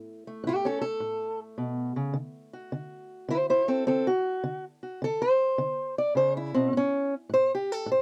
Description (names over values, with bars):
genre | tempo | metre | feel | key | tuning
acoustic country blues, solo or duo | 105 BPM | 4/4 | swing 67% on 8ths | unclear | A4 = 441 Hz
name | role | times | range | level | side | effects
fingerpicked steel-string acoustic guitar | solo | 0.0-8.0 s | A2 to D5 | -28 LUFS | equal | none
room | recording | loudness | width
little or no reverb | dry, close 1970s-style studio recording | -28 LUFS | mono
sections
0.0-8.0 A section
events
steel-string acoustic guitar solo 0.0-8.0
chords
0.0 A; 2.2 D; 6.7 A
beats
0.44 1.01 1.59 | 2.16 2.73 3.30 3.87 | 4.44 5.01 5.58 6.16 | 6.73 7.30 7.87